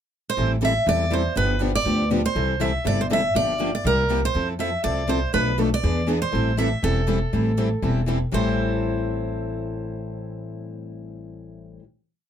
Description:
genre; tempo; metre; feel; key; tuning
acoustic string swing (jazz manouche); 241 BPM; 4/4; swing 55% on 8ths; A minor; A4 = 443 Hz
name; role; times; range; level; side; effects
picked steel-string acoustic guitar; melody; 0.3-11.8 s; A4 to E5; -24 LUFS; right 2 dB; none
picked steel-string acoustic guitar; accompaniment; 0.4-11.8 s; A2 to A4; -27 LUFS; left 6 dB; none
picked steel-string acoustic guitar; accompaniment; 0.4-11.9 s; A2 to B4; -32 LUFS; right 5 dB; none
upright bass; bass; 0.4-11.8 s; E1 to F2; -25 LUFS; equal; none
room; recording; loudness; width
light reverb; close, detailed microphones; -20 LUFS; side -9 dB against mid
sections
0.0-0.4 pickup bar; 0.4-8.3 A section; 8.3-10.3 final chord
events
none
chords
0.4 Am7; 1.4 G7; 2.4 C6; 3.4 Gm7; 3.8 C7; 4.3 Fmaj7; 5.3 Bm7b5; 5.8 E7; 6.3 Am7

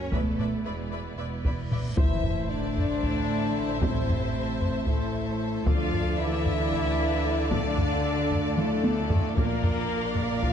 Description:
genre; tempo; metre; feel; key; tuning
cinematic, epic orchestral film score; 228 BPM (eighths); 7/8; straight; A phrygian; A4 = 440 Hz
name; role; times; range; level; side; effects
rich symphonic violin section; melody; 0.0-10.5 s; G#4 to F5; -38 LUFS; left 5 dB; none
rich symphonic string section; sustained chords; 0.0-10.5 s; A3 to A5; -37 LUFS; left 1 dB; none
dark studio double bass section; bass; 0.0-10.5 s; E1 to D2; -32 LUFS; right 2 dB; none
rich symphonic cello section; bass; 0.0-10.5 s; A2 to Db4; -34 LUFS; right 4 dB; none
warm symphonic violin section; second line; 0.1-10.5 s; D5 to B5; -40 LUFS; left 3 dB; none
rich symphonic viola section; accompaniment; 0.1-10.5 s; A4 to D5; -36 LUFS; right 2 dB; none
mellow trombone section; sustained chords; 0.1-10.5 s; A2 to B3; -35 LUFS; right 1 dB; none
warm French horn section; sustained chords; 0.1-10.5 s; A3 to E5; -31 LUFS; left 5 dB; none
taiko ensemble; drums; 0.1-10.5 s; none; -28 LUFS; equal; none
reverse cymbal and impact; sound effects; 1.7-3.8 s; none; -36 LUFS; equal; none
room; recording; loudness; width
moderate scoring stage reverb, RT60 1.6 s; dark, warm production, nothing above 10.5 kHz; -24 LUFS; side -8 dB against mid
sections
0.0-2.0 A section; 2.0-10.5 B section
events
reverse cymbal 1.7; impact 2.0-3.8; drum fill 8.6-9.4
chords
0.1 E7; 2.0 Am; 5.7 Dm; 9.4 Bb

